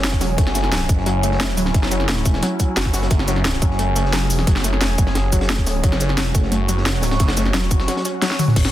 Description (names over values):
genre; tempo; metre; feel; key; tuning
dark technical drum and bass; 176 BPM; 4/4; straight; F# minor; A4 = 440 Hz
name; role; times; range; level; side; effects
sweeping resonant pad; sustained chords; 0.0-8.7 s; F#3 to G#4; -26 LUFS; equal; chorus, phaser, sidechain pumping
phased detuned saw bass; bass; 0.0-8.7 s; E1 to F#1; -21 LUFS; equal; phaser, tube saturation, sidechain pumping
drum and bass drum kit; drums; 0.0-8.7 s; crash cymbal, hi-hat, shaker, snare drum, toms; -22 LUFS; equal; overdrive
crunchy breakbeat drum kit; drums; 0.1-8.7 s; hi-hat, snare drum; -30 LUFS; equal; high-pass filter on hats, high-pass filter on snare, high-pass filter on room
electronic kick drum; drums; 0.1-8.6 s; none; -18 LUFS; equal; none
wide unison pluck; arpeggios; 0.2-8.5 s; F#3 to F#4; -26 LUFS; left 2 dB; sidechain pumping, tape echo
room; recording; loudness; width
light reverb, digital ambience; dense, heavily limited modern master; -16 LUFS; side -13 dB against mid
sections
0.0-8.6 A section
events
drop 0.0-8.6; drum fill 8.2-8.6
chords
0.0 F#madd9